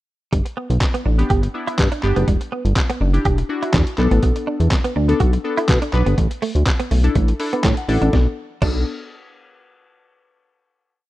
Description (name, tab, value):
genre	dance-pop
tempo	123 BPM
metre	4/4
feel	straight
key	B minor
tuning	A4 = 442 Hz
part	direct-recorded clean electric guitar	riff	0.3-8.8 s	G3 to G4	-25 LUFS	right 4 dB	ensemble chorus
part	chorused synth bass	bass	0.3-8.8 s	E1 to B2	-17 LUFS	equal	sidechain pumping
part	lo-fi sampler-style drum kit	drums	0.3-8.7 s	crash cymbal, handclaps, hi-hat, kick drum, snare drum	-20 LUFS	equal	none
part	glassy digital keys	accompaniment	1.2-8.8 s	B3 to B5	-24 LUFS	left 2 dB	chorus, sidechain pumping
room	little or no reverb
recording	rough home demo mix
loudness	-16 LUFS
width	side -16 dB against mid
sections	0.3-8.1 pre-chorus; 8.1-10.1 final chord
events	synth keys fill 7.2-8.1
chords	0.3 G; 2.3 Em7; 4.0 Bm7; 6.2 Asus4; 8.1 Bm7